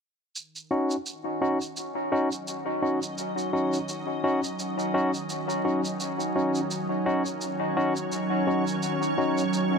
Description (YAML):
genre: ambient dub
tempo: 85 BPM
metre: 4/4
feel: swing 56% on 16ths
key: Eb minor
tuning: A4 = 440 Hz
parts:
  - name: soft additive organ-like pad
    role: sustained chords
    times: 1.3-9.8 s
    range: Eb3 to Eb5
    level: -30 LUFS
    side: right 2 dB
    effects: ensemble chorus, built-in reverb
  - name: shaker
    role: drums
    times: 0.4-9.7 s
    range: none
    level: -37 LUFS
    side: right 3 dB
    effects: dub echo
  - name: barky tine electric piano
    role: stabs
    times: 0.7-9.4 s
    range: Db4 to Gb4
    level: -26 LUFS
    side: left 1 dB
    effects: low-pass filter, dub echo
room: light reverb, digital ambience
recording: dark, warm production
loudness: -25 LUFS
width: side -5 dB against mid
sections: 0.4-9.8 A section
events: fade-in on ambient pad 0.4-9.8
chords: 0.4 Ebm7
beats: | 0.36 1.06 1.77 2.47 | 3.18 3.89 4.59 5.30 | 6.00 6.71 7.42 8.12 | 8.83 9.53